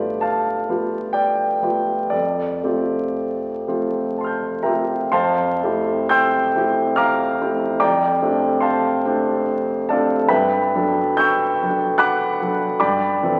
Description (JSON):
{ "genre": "classical, impressionist solo piano", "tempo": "57-76 BPM", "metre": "3/4", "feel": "rubato", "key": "F major", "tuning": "A4 = 440 Hz", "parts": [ { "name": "clear grand piano", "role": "solo", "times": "0.0-13.4 s", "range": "F2 to G6", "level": "-20 LUFS", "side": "equal", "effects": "none" } ], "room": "wet concert hall reverb, RT60 1.8 s", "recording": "very old 78 rpm record, vinyl crackle, faint mains hum", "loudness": "-20 LUFS", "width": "mono", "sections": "0.0-5.1 A section; 5.1-13.4 A section", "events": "none", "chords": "0.0 G9; 2.1 F69; 7.8 Gm11/F; 10.3 Gmaj9; 12.8 Am11/G", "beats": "0.25 1.16 | 2.13 3.18 4.17 | 5.14 6.11 6.97 | 7.80 8.62 9.47 | 10.30 11.19 12.01 | 12.80" }